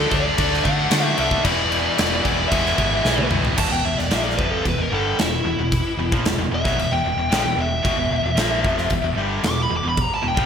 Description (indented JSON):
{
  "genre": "hard rock",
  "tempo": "112 BPM",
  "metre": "4/4",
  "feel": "straight",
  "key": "unclear",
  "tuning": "A4 = 440 Hz",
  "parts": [
    { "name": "biting lead guitar", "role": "melody", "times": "0.0-10.5 s", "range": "E4 to D6", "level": "-23 LUFS", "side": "equal", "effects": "overdrive" },
    { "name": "scooped high-gain guitar", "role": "riff", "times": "0.0-10.5 s", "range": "E2 to D4", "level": "-27 LUFS", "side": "right 8 dB", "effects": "distortion" },
    { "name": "tight distorted guitar", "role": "riff", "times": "0.0-10.5 s", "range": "E2 to D4", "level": "-26 LUFS", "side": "left 8 dB", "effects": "distortion" },
    { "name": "tight distorted guitar", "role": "riff", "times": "0.0-3.6 s", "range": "D3 to E4", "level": "-27 LUFS", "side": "right 2 dB", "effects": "distortion" },
    { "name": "hollow-body short-scale fingered electric bass", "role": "bass", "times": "0.0-10.5 s", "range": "E1 to D3", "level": "-26 LUFS", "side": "equal", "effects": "none" },
    { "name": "big rock drum kit", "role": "drums", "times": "0.1-10.5 s", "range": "crash cymbal, kick drum, snare drum, toms", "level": "-23 LUFS", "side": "equal", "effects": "gated reverb" }
  ],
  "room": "moderate lush hall reverb, RT60 1.7 s, small room ambience",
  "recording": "bright 1980s-style digital production",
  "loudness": "-18 LUFS",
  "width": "side -7 dB against mid",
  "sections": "0.0-3.6 A section; 3.6-10.5 B section",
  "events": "drum fill 3.0-3.6; lead electric guitar solo 3.6-10.5",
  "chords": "0.0 D; 1.4 Em; 2.5 E; 3.6 Em"
}